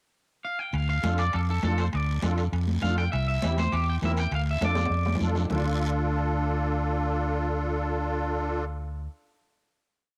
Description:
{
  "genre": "latin, cumbia",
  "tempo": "202 BPM",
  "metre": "4/4",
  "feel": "straight",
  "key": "D minor",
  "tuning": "A4 = 441 Hz",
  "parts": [
    { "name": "electric guitar at the edge of break-up", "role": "melody", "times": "0.4-5.2 s", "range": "G4 to G5", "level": "-33 LUFS", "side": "equal", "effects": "none" },
    { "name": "fingered electric bass", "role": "bass", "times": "0.7-9.1 s", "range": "C2 to F2", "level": "-29 LUFS", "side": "equal", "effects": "none" },
    { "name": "congas", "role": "percussion", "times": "0.7-5.6 s", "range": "none", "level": "-36 LUFS", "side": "equal", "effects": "none" },
    { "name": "guiro", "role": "percussion", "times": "0.7-5.6 s", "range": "none", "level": "-46 LUFS", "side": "equal", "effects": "none" },
    { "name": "timbales", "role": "percussion", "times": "0.7-5.6 s", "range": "none", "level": "-39 LUFS", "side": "equal", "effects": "none" },
    { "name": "musette accordion", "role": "accompaniment", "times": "1.0-8.6 s", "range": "C4 to Bb4", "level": "-33 LUFS", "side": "equal", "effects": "cassette tape" }
  ],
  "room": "light reverb, studio ambience",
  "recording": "home recording on cassette",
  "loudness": "-27 LUFS",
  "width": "mono",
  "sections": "0.0-0.7 pickup bar; 0.7-5.5 A section; 5.5-7.9 final chord",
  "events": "drum fill 4.8-5.5",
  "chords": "0.0 N.C.; 0.7 Dm; 3.1 C; 4.3 Dm"
}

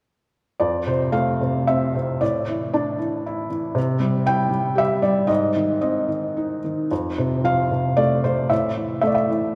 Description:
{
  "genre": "classical, lyrical solo piano",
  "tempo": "113 BPM",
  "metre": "3/4",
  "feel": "rubato",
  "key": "F major",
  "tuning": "A4 = 440 Hz",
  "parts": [
    { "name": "felt-muted upright piano", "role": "solo", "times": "0.6-9.6 s", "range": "F2 to G5", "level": "-22 LUFS", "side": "equal", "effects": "none" }
  ],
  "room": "wet church reverb, RT60 3.2 s",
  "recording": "recorded in a church or concert hall",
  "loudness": "-22 LUFS",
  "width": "mono",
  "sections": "0.6-9.6 A section",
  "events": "none",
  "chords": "0.6 F; 2.2 Asus4; 3.8 C; 5.3 Ab; 6.9 F; 8.5 Asus4"
}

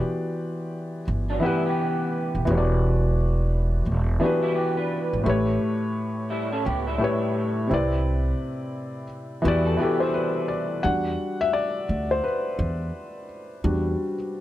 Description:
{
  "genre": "lo-fi hip hop",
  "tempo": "86 BPM",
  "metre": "4/4",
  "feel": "swing 64% on 16ths",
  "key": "E minor",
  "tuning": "A4 = 439 Hz",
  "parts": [
    { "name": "felt-muted upright piano", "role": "accompaniment", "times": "0.0-14.4 s", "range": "A2 to F#5", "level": "-24 LUFS", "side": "left 1 dB", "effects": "low-pass filter" },
    { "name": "upright bass", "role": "bass", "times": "1.1-13.9 s", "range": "D#1 to E2", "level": "-24 LUFS", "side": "right 1 dB", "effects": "none" },
    { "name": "electric guitar through a small old amp", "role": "second line", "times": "1.3-10.8 s", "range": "F#3 to B4", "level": "-30 LUFS", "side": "right 2 dB", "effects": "ensemble chorus, low-pass filter, tape echo" }
  ],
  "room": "moderate studio reverb, RT60 0.5 s",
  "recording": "none",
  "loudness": "-22 LUFS",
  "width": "side -14 dB against mid",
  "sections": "0.0-10.8 A section; 10.8-14.4 B section",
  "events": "break 10.1-10.8; felt piano solo 10.8-14.4",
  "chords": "0.0 Em9; 5.3 A9; 7.7 Cmaj9; 9.4 Em7; 10.8 Em9"
}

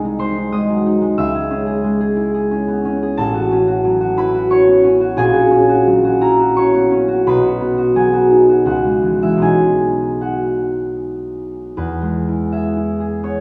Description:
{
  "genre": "classical, solo harp piece",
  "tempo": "75-93 BPM",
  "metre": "3/4",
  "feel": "rubato",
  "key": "C# minor, E major from 3.2 s",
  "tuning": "A4 = 441 Hz",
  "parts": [
    { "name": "concert harp", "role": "solo", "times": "0.0-13.4 s", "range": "A1 to E6", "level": "-16 LUFS", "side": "equal", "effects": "none" }
  ],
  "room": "moderate recital hall reverb, RT60 1.4 s",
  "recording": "none",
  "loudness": "-16 LUFS",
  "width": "mono",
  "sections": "0.0-11.8 A section; 11.8-13.4 B section",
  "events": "none",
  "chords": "0.0 G#/B#; 1.2 C#m; 3.2 F#m7/A; 5.2 F#7/A#; 7.2 B; 8.7 C#m; 9.4 B; 11.8 E"
}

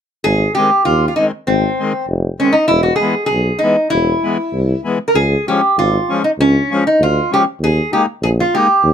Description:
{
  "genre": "alpine folk, alpine dance band",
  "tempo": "98 BPM",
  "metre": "2/4",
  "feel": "straight",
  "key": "Ab major",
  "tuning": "A4 = 440 Hz",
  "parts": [
    { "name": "lap resonator guitar", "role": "melody", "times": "0.2-8.9 s", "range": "C4 to Bb4", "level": "-14 LUFS", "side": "equal", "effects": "none" },
    { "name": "warm tuba", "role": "bass", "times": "0.3-8.9 s", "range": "E1 to Eb2", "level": "-16 LUFS", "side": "equal", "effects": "none" },
    { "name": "accordion", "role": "accompaniment", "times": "0.6-8.7 s", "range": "Eb3 to Eb4", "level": "-18 LUFS", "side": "left 4 dB", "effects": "none" }
  ],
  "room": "light reverb",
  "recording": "close, detailed microphones",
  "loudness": "-13 LUFS",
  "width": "side -8 dB against mid",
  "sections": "0.3-8.9 A section",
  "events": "none",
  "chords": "0.3 Ab; 2.7 E; 5.2 Db; 7.6 Ebsus4"
}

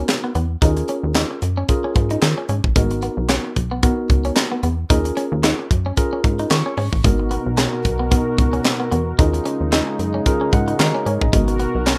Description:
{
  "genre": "early-eighties boogie funk",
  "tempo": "112 BPM",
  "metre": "4/4",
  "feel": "swing 56% on 16ths",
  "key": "G# dorian",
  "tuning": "A4 = 440 Hz",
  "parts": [
    { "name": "tine electric piano", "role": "accompaniment", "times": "0.0-12.0 s", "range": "B3 to C#6", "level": "-26 LUFS", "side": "equal", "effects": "none" },
    { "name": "electric guitar at the edge of break-up", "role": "riff", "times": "0.0-12.0 s", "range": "G#3 to D#4", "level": "-28 LUFS", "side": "equal", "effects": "subtle chorus" },
    { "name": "plucky analog bass", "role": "bass", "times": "0.0-12.0 s", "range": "G#1 to D#3", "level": "-23 LUFS", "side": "equal", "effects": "none" },
    { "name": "tight funk drum kit", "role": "drums", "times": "0.1-12.0 s", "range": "handclaps, hi-hat, kick drum, snare drum", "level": "-21 LUFS", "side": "equal", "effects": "none" },
    { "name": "warm analog pad", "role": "sustained chords", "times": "7.0-12.0 s", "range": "B2 to A#4", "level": "-27 LUFS", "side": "equal", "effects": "chorus" }
  ],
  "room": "light reverb",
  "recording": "rough home demo mix",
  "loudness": "-19 LUFS",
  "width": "mono",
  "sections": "0.0-12.0 A section",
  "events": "tine electric piano fill 6.2-7.0, 10.3-11.3",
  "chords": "0.0 G#m9 (rootless); 0.6 D#7sus4; 2.8 G#m9; 4.9 D#7sus4; 7.0 G#m9; 9.2 D#7sus4; 11.3 G#m9"
}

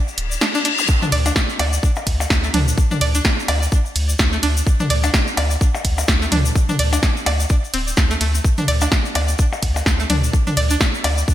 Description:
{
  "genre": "minimal techno",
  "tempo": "127 BPM",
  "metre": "4/4",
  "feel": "swing 57% on 16ths",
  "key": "unclear",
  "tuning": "A4 = 440 Hz",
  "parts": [
    { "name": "reverse cymbal and zap", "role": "sound effects", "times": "0.2-0.9 s", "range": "none", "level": "-23 LUFS", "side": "left 4 dB", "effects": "none" },
    { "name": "egg shaker", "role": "percussion", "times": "0.1-11.3 s", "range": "none", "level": "-30 LUFS", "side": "left 4 dB", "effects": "none" },
    { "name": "round analog bass", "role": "bass", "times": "0.2-11.2 s", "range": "D1 to D2", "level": "-20 LUFS", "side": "equal", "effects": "tube saturation, sidechain pumping" },
    { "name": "punchy analog drum machine", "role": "drums", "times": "0.2-11.2 s", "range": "hi-hat, ride cymbal, snare drum", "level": "-22 LUFS", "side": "right 1 dB", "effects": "overdrive, gated reverb" },
    { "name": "string-like resonator pluck", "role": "riff", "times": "0.4-11.1 s", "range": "A3 to D5", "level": "-24 LUFS", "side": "right 1 dB", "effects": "chorus, sidechain pumping, digital delay" },
    { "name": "electronic kick drum", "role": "drums", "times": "0.9-11.3 s", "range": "none", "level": "-17 LUFS", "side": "equal", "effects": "none" },
    { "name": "electronic toms and percussion blips", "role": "percussion", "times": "1.0-11.2 s", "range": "none", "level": "-25 LUFS", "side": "left 2 dB", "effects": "gated reverb, ping-pong delay" }
  ],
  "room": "light reverb, digital ambience",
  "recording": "bright 1980s-style digital production",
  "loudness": "-15 LUFS",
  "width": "side -12 dB against mid",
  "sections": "0.0-11.3 A section",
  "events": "reverse cymbal 0.2-0.9",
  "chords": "0.0 D5"
}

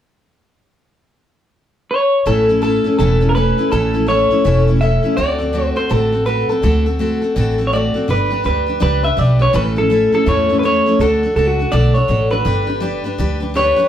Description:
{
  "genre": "honky-tonk and classic country",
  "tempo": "165 BPM",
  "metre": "4/4",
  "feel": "swing 62% on 8ths",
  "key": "A mixolydian",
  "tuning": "A4 = 441 Hz",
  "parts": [
    { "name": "electric guitar through a small old amp", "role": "melody", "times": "1.9-13.9 s", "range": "F#4 to E5", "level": "-16 LUFS", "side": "equal", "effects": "tape echo" },
    { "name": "picked steel-string acoustic guitar", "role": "accompaniment", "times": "2.3-13.9 s", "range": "A2 to B4", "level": "-18 LUFS", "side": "left 2 dB", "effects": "none" },
    { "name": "upright bass", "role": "bass", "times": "2.3-13.7 s", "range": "E1 to E2", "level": "-18 LUFS", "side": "right 1 dB", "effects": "none" }
  ],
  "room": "moderate studio reverb, RT60 0.7 s",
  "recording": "heard from further back in the room",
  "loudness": "-13 LUFS",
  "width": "side -10 dB against mid",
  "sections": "0.8-2.3 A section; 2.3-13.9 B section",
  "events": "none",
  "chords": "0.8 N.C.; 2.3 A; 5.2 D7; 8.1 G; 9.5 A; 11.0 D; 12.5 G"
}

